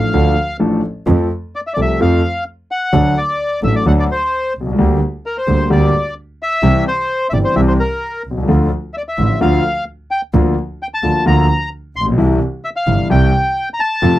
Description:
tango; 130 BPM; 4/4; rubato; F major; A4 = 440 Hz
bandoneon; melody; 0.0-14.2 s; Bb4 to C6; -18 LUFS; left 1 dB
warm concert grand piano; accompaniment; 0.0-14.2 s; G1 to A4; -15 LUFS; left 1 dB
clear double bass; bass; 0.0-14.2 s; G1 to F2; -16 LUFS; right 2 dB
little or no reverb; dry, close 1970s-style studio recording; -13 LUFS; side -15 dB against mid
0.0-1.1 A section; 1.1-14.2 B section
break 0.6-1.1
0.0 Dm; 1.1 F; 2.9 D; 4.8 Gm/D; 6.6 C; 8.5 Dm; 10.3 Bb/D; 12.2 C
0.14 0.61 | 1.07 1.54 2.00 2.47 | 2.93 3.39 3.86 4.32 | 4.78 5.24 5.71 6.17 | 6.63 7.09 7.56 8.02 | 8.48 8.95 9.41 9.87 | 10.33 10.79 11.26 11.72 | 12.18 12.64 13.10 13.56 | 14.03

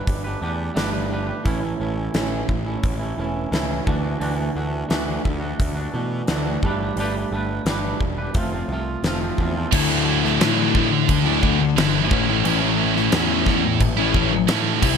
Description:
quiet-loud alternative rock; 87 BPM; 4/4; straight; A mixolydian; A4 = 440 Hz
twangy electric guitar; arpeggios; 0.0-9.7 s; A2 to B4; -26 LUFS; right 3 dB
fuzz picked electric bass; bass; 0.1-15.0 s; E1 to B2; -26 LUFS; equal; overdrive
huge arena drum kit; drums; 0.1-15.0 s; crash cymbal, hi-hat, kick drum, snare drum; -24 LUFS; equal
scooped high-gain guitar; riff; 9.7-15.0 s; A2 to E4; -21 LUFS; right 16 dB; distortion
thick fuzz guitar; riff; 9.7-15.0 s; A2 to E4; -21 LUFS; left 12 dB; distortion
light reverb, small room ambience; -19 LUFS; side -6 dB against mid
0.0-9.7 A section; 9.7-15.0 B section
0.0 Gadd9; 1.5 A; 3.9 Dadd9; 6.6 Gadd9; 8.3 F; 9.7 Dsus2; 12.1 A
0.07 0.76 | 1.45 2.14 2.83 3.52 | 4.21 4.90 5.59 6.28 | 6.97 7.66 8.34 9.03 | 9.71 10.40 11.08 11.76 | 12.44 13.12 13.80 14.48

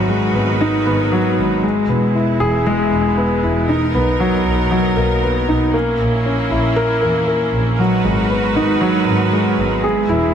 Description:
piano and strings electronica; 117 BPM; 4/4; straight; G# minor; A4 = 440 Hz
clear studio string section; sustained chords; 0.0-10.3 s; G#3 to B4; -22 LUFS; right 2 dB
dark concert grand piano; riff; 0.0-10.3 s; F#3 to A#4; -16 LUFS; left 1 dB; ping-pong delay
bright studio double bass section; bass; 0.4-10.3 s; E1 to E2; -20 LUFS; right 1 dB
moderate huge ambient reverb, RT60 4.3 s; -14 LUFS; side -8 dB against mid
0.0-10.3 A section
0.0 G#m7; 1.6 E; 3.7 Bmaj7; 5.7 A#dim; 7.8 G#m7
0.10 0.61 1.12 | 1.64 2.15 2.66 3.17 | 3.69 4.20 4.71 5.23 | 5.74 6.25 6.76 7.28 | 7.79 8.30 8.82 9.33 | 9.84

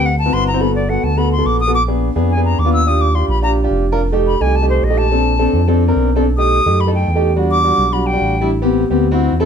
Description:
jazz; 213 BPM; 4/4; straight; A4 = 436 Hz
bright concert flute; second line; 0.0-8.5 s; C5 to E6; -18 LUFS; left 2 dB
warm grand piano; accompaniment; 0.0-9.5 s; G3 to C5; -16 LUFS; equal
smooth gliding synth bass; bass; 0.0-9.5 s; F1 to F#2; -17 LUFS; equal
moderate studio reverb, RT60 0.8 s; dark, warm production; -13 LUFS; side -7 dB against mid
0.6-9.5 A section
flute solo 0.0-9.5
0.0 D13; 0.6 Gmaj7; 1.7 Bb7b9; 2.9 Ebmaj7; 4.0 F7; 5.1 Bbmaj7; 6.2 B7b13; 7.4 Em9; 8.5 Am9
0.05 0.33 | 0.61 0.89 1.17 1.46 | 1.74 2.02 2.30 2.58 | 2.86 3.14 3.42 3.71 | 3.99 4.27 4.55 4.83 | 5.11 5.39 5.67 5.96 | 6.24 6.52 6.80 7.08 | 7.36 7.64 7.92 8.20 | 8.48 8.76 9.04 9.33

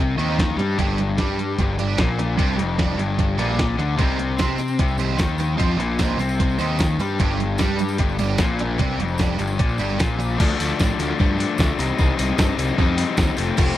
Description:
indie rock; 150 BPM; 4/4; straight; C dorian; A4 = 440 Hz
biting overdriven guitar; riff; 0.0-13.8 s; F2 to Eb4; -24 LUFS; left 5 dB
sludgy distorted guitar; riff; 0.0-10.2 s; G3 to Eb5; -27 LUFS; right 7 dB; overdrive, ensemble chorus, tape echo
fuzz picked electric bass; bass; 0.0-13.7 s; F1 to C3; -24 LUFS; equal; overdrive
clean 12-bit digital drum machine; drums; 0.2-13.7 s; crash cymbal, hi-hat, kick drum, snare drum; -22 LUFS; equal; tape echo
tambourine; percussion; 4.0-13.7 s; -42 LUFS; right 4 dB; tape echo
digital ambience; echo-heavy mix; -18 LUFS; side -13 dB against mid
0.0-10.4 A section; 10.4-13.8 B section
0.0 Cm; 0.8 G5; 4.0 Cm; 7.2 G5; 10.4 Dm; 11.8 Cm
0.38 | 0.78 1.18 1.58 1.99 | 2.39 2.79 3.19 3.59 | 3.99 4.39 4.79 5.20 | 5.59 6.00 6.39 6.79 | 7.19 7.59 7.99 8.39 | 8.79 9.19 9.59 9.99 | 10.39 10.79 11.19 11.58 | 11.98 12.38 12.78 13.18 | 13.58

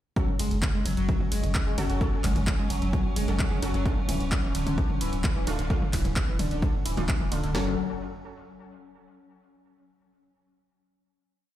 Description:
driving peak-time techno; 130 BPM; 4/4; straight; F# minor; A4 = 443 Hz
overdriven synth lead; riff; 0.2-7.8 s; D3 to G#3; -33 LUFS; left 1 dB; distortion, phaser, wide subtle chorus, sidechain pumping, ping-pong delay
rave stab; stabs; 0.2-7.7 s; A3 to A4; -36 LUFS; equal; chorus, built-in reverb, sidechain pumping, ping-pong delay
swarming drone; drone; 0.8-7.6 s; F#3 to C#4; -36 LUFS; equal; built-in reverb, sidechain pumping
punchy analog drum machine; drums; 0.2-7.5 s; handclaps, hi-hat, ride cymbal, toms; -33 LUFS; equal; overdrive, sidechain pumping on hats, small room reverb, sidechain pumping on toms, sidechain pumping on cymbals
techno drum kit; drums; 0.2-7.7 s; kick drum, snare drum; -27 LUFS; equal; small room reverb
saturated sub bass; bass; 0.4-7.8 s; D1 to F#1; -30 LUFS; equal; tube saturation, sidechain pumping, low-pass filter
light reverb, digital ambience; played on a big sound system in a bare room, large studio reverb; -24 LUFS; side -12 dB against mid
0.2-7.5 drop; 7.5-9.4 final chord
drop 0.2-7.5
0.2 F#m; 3.9 Dm; 7.5 F#m
| 0.16 0.62 1.09 1.55 | 2.01 2.47 2.93 3.39 | 3.85 4.32 4.78 5.24 | 5.70 6.16 6.62 7.09 | 7.55

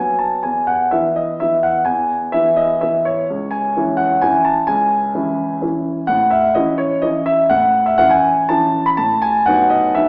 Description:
classical, piano waltz; 116-134 BPM; 3/4; rubato; E major; A4 = 441 Hz
warm grand piano; solo; 0.0-10.1 s; C#2 to B5; -13 LUFS; equal
wet recital hall reverb, RT60 1.6 s; heard from further back in the room, small speaker sound; -13 LUFS; side -36 dB against mid
0.0-10.1 A section
0.4 E; 3.3 C#m; 6.1 A; 9.0 B7/A
| 0.45 0.93 1.42 | 1.87 2.35 2.83 | 3.30 3.76 4.23 | 4.69 5.15 5.63 | 6.09 6.56 7.04 | 7.51 7.99 8.50 | 8.99 9.47 9.95

